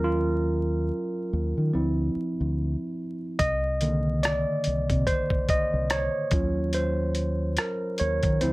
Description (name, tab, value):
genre	R&B, neo-soul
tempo	72 BPM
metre	4/4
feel	swing 59% on 16ths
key	unclear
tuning	A4 = 435 Hz
part	barky tine electric piano	accompaniment	0.0-8.5 s	D3 to Eb5	-26 LUFS	right 1 dB	overdrive
part	deep dub fingered electric bass	bass	0.0-8.5 s	C2 to Eb3	-27 LUFS	equal	none
part	dusty soul sampler-style drum kit	drums	3.4-8.5 s	hi-hat, kick drum, rim click	-27 LUFS	equal	none
room	light reverb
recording	vinyl crackle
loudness	-24 LUFS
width	side -20 dB against mid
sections	0.0-8.5 A section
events	tine electric piano solo 0.0-8.5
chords	0.0 Ebm9; 1.7 Dm9; 3.4 Cm9; 6.3 Ebm9